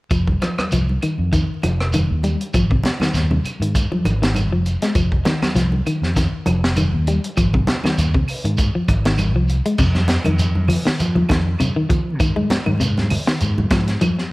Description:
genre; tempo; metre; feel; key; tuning
afrobeat; 99 BPM; 4/4; swing 55% on 16ths; F minor; A4 = 441 Hz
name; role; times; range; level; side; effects
clean electric guitar; arpeggios; 0.1-14.2 s; C3 to Ab3; -22 LUFS; left 2 dB; none
fingered electric bass; bass; 0.1-14.0 s; F1 to F3; -20 LUFS; equal; none
tight funk drum kit; drums; 0.1-14.3 s; crash cymbal, hi-hat, kick drum, rim click, snare drum; -22 LUFS; equal; none
claves; percussion; 0.1-14.2 s; none; -34 LUFS; right 3 dB; none
shekere; percussion; 0.1-14.2 s; none; -28 LUFS; right 1 dB; none
congas; percussion; 0.3-14.2 s; none; -25 LUFS; right 1 dB; none
room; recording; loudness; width
light reverb; vinyl crackle; -16 LUFS; side -21 dB against mid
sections
0.1-9.8 A section; 9.8-14.3 B section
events
none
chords
0.1 F5; 2.5 Ab6; 5.0 F5; 7.4 Ab6; 9.8 F5; 12.2 Ab5

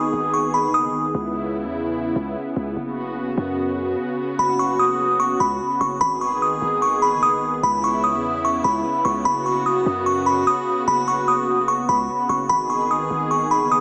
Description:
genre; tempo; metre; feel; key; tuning
hip hop; 148 BPM; 4/4; half-time; G# minor; A4 = 440 Hz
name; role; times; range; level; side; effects
glassy synth bell; melody; 0.0-0.9, 4.4-13.8 s; B5 to D#6; -22 LUFS; equal; chorus, tremolo, analog delay
warm analog pad; sustained chords; 0.0-13.8 s; C#3 to G#4; -27 LUFS; equal; lush chorus
long sustained 808-style bass; bass; 0.0-13.8 s; F#1 to F#2; -32 LUFS; equal; none
room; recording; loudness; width
moderate spring reverb, RT60 2.6 s; echo-heavy mix, small speaker sound; -21 LUFS; mono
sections
0.0-6.0 A section; 6.0-13.8 B section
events
break 1.1-4.4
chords
0.0 G#m; 1.1 C#m7; 2.8 F#sus4; 6.0 G#m; 7.6 C#m7; 9.3 F#sus4; 12.5 G#m

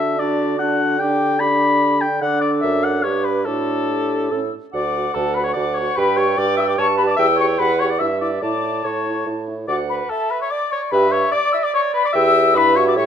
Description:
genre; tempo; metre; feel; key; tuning
quick classical-period movement for wind quintet; 146 BPM; 3/4; straight; D major; A4 = 440 Hz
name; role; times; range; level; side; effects
mellow concert flute; melody; 0.0-13.0 s; A5 to E6; -22 LUFS; left 7 dB; none
warm oboe; second line; 0.0-13.1 s; A4 to B5; -21 LUFS; left 3 dB; none
warm French horn; accompaniment; 0.0-13.1 s; C#4 to G4; -24 LUFS; equal; none
warm clarinet; accompaniment; 0.0-13.1 s; F#4 to A5; -26 LUFS; right 10 dB; none
mellow bassoon; bass; 0.0-13.1 s; D2 to D3; -22 LUFS; right 4 dB; none
room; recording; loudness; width
light reverb; close, detailed microphones; -16 LUFS; side -8 dB against mid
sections
0.0-4.7 A section; 4.7-13.1 B section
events
none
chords
0.0 D; 1.0 G/D; 2.2 D; 3.0 G; 3.5 D/A; 4.3 A; 4.7 D; 6.0 Gadd9; 7.2 Em; 8.0 Em/G; 8.4 A; 9.7 D; 10.9 G5; 12.1 Em; 12.6 Em/G

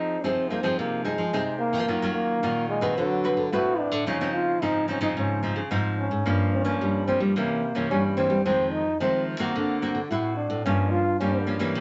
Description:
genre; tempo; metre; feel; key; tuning
samba and choro; 109 BPM; 4/4; straight; F minor; A4 = 440 Hz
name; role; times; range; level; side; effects
warm trombone; melody; 0.0-11.5 s; F#3 to F#4; -28 LUFS; equal; none
nylon-string guitar; accompaniment; 0.0-11.8 s; F2 to B4; -30 LUFS; equal; none
nylon-string guitar; bass; 0.0-11.8 s; G2 to G3; -32 LUFS; equal; none
room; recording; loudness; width
moderate studio ambience, RT60 0.4 s; nothing above 8.0 kHz; -25 LUFS; mono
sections
0.0-11.8 A section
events
none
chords
0.0 Fm7; 1.9 Ebm9; 3.0 D6; 4.1 Dbmaj9; 6.3 Gm7b5; 7.4 C7b9; 8.5 Fm7; 9.6 D7b13; 10.7 Gm7b5

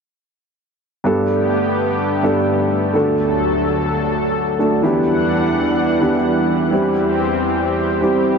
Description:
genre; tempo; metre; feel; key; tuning
EDM; 127 BPM; 4/4; straight; G major; A4 = 439 Hz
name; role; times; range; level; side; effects
dark concert grand piano; accompaniment; 1.0-8.4 s; G2 to A4; -17 LUFS; right 1 dB; ping-pong delay
lush unison pad; sustained chords; 1.1-8.4 s; D2 to F#5; -19 LUFS; left 2 dB; chorus, vintage 12-bit sampler grit
room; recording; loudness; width
moderate huge ambient reverb, RT60 7.8 s; none; -15 LUFS; side -5 dB against mid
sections
1.1-8.4 A section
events
none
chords
1.1 Gadd9; 2.9 D; 4.8 Em7; 6.7 C/E

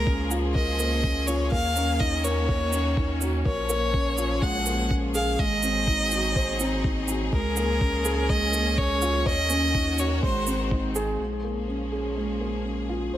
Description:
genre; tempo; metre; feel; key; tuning
piano and strings electronica; 124 BPM; 4/4; straight; Bb minor; A4 = 443 Hz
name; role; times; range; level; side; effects
clear violin; melody; 0.0-10.7 s; Bb4 to Gb5; -27 LUFS; equal; ping-pong delay
bright studio string section; sustained chords; 0.0-13.2 s; Eb3 to Ab4; -34 LUFS; left 2 dB; sidechain pumping
felt-muted upright piano; riff; 0.0-13.2 s; Ab3 to Db5; -28 LUFS; equal; ping-pong delay
warm sub bass; bass; 0.0-13.2 s; Ab1 to Eb2; -29 LUFS; equal; sidechain pumping
electronic kick drum; drums; 0.1-10.8 s; none; -26 LUFS; equal; none
shaker; drums; 0.3-11.1 s; none; -32 LUFS; right 6 dB; low-pass filter on perc, low-pass filter on room
room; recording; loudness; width
light reverb; none; -22 LUFS; side -12 dB against mid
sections
0.0-11.2 A section; 11.2-13.2 B section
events
none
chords
0.0 Db6; 1.5 Ebm7; 3.5 Bbm7; 5.4 Ab7; 7.3 Db6; 9.3 Ebm7; 10.2 Ab7; 11.2 Bbm7

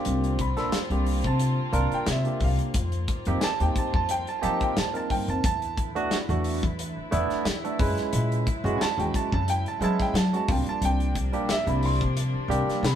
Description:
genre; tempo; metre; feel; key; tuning
electric jazz fusion; 89 BPM; 4/4; swing 54% on 16ths; unclear; A4 = 440 Hz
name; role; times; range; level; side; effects
barky tine electric piano; accompaniment; 0.0-12.8 s; G3 to B4; -29 LUFS; right 2 dB; medium stereo tremolo
dark studio string section; sustained chords; 0.0-13.0 s; C3 to B4; -36 LUFS; left 2 dB; none
upright bass; bass; 0.1-13.0 s; Bb1 to F#3; -27 LUFS; left 1 dB; none
modern studio drum kit; drums; 0.1-13.0 s; hi-hat, kick drum, snare drum; -30 LUFS; left 1 dB; none
clear grand piano; melody; 0.4-13.0 s; E5 to C6; -30 LUFS; right 3 dB; none
room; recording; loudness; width
moderate studio reverb, RT60 0.8 s; band playing live in one room; -23 LUFS; side -10 dB against mid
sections
0.0-13.0 A section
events
grand piano solo 0.0-13.0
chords
0.0 C9sus4; 2.7 F9sus4; 5.4 E9sus4; 7.8 F#9sus4; 10.5 C9sus4

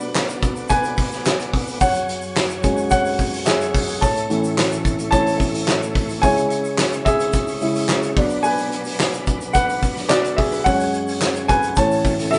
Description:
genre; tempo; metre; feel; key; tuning
piano-driven pop; 108 BPM; 4/4; straight; unclear; A4 = 440 Hz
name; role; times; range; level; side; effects
dark upright piano; accompaniment; 0.0-12.4 s; A2 to B5; -22 LUFS; equal; none
tonewheel organ; sustained chords; 0.0-12.4 s; F#2 to D5; -31 LUFS; equal; chorus vibrato, fast rotary speaker
loose indie drum kit; drums; 0.0-12.4 s; handclaps, hi-hat, kick drum, snare drum; -24 LUFS; equal; none
egg shaker; percussion; 0.0-12.4 s; none; -39 LUFS; equal; none
room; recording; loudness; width
moderate studio reverb, RT60 0.8 s; band playing live in one room, nothing above 10.5 kHz; -20 LUFS; mono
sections
0.0-12.4 A section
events
upright piano solo 0.0-12.4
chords
0.0 Bm; 1.8 F#sus2; 4.0 A; 6.2 C#m; 8.2 Bm; 10.7 F#sus2; 11.8 A

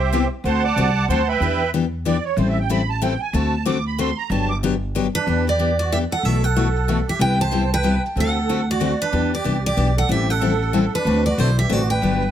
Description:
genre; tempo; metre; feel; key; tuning
acoustic string swing (jazz manouche); 187 BPM; 3/4; swing 59% on 8ths; unclear; A4 = 442 Hz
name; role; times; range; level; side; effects
musette accordion; second line; 0.0-12.3 s; D4 to D6; -25 LUFS; right 7 dB; none
upright bass; bass; 0.0-12.3 s; G1 to E2; -22 LUFS; equal; none
picked steel-string acoustic guitar; accompaniment; 0.1-12.2 s; B2 to A4; -22 LUFS; left 6 dB; none
picked steel-string acoustic guitar; melody; 5.1-12.3 s; B4 to A5; -23 LUFS; right 1 dB; tape echo
room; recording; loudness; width
light reverb; close, detailed microphones; -18 LUFS; side -10 dB against mid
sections
0.0-5.3 A section; 5.3-12.3 B section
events
accordion solo 0.0-5.3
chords
0.4 D7; 1.4 Em7; 2.4 Am7; 3.3 D7; 4.3 Gmaj7; 5.3 Em7; 6.2 B7sus4; 7.2 Cmaj7; 8.2 D7; 9.1 Em7; 10.1 Am7; 11.1 D6

